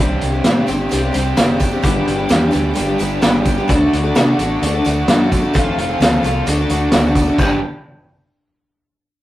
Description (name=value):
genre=folk rock and heartland rock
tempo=130 BPM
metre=4/4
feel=straight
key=G major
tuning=A4 = 441 Hz
part: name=picked twelve-string acoustic guitar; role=accompaniment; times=0.0-7.6 s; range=G2 to A4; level=-19 LUFS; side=left 2 dB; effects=none
part: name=clear studio string section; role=sustained chords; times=0.0-7.6 s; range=D4 to D6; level=-32 LUFS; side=equal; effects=none
part: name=raw garage guitar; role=riff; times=0.0-7.6 s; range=F2 to G4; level=-22 LUFS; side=right 2 dB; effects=overdrive, tremolo
part: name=picked electric bass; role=bass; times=0.0-7.6 s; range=F1 to C3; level=-22 LUFS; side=equal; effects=none
part: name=vintage drum kit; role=drums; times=0.2-7.5 s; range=crash cymbal, hi-hat, kick drum, snare drum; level=-17 LUFS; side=equal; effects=none
part: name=tambourine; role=percussion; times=0.4-7.6 s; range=none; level=-37 LUFS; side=right 5 dB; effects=none
room=light reverb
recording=rough rehearsal-room recording, warm saturation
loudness=-13 LUFS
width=side -15 dB against mid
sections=0.0-7.4 A section; 7.4-9.2 B section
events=none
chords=0.0 Csus2; 1.8 G; 3.7 D; 5.5 F; 6.5 D; 7.4 G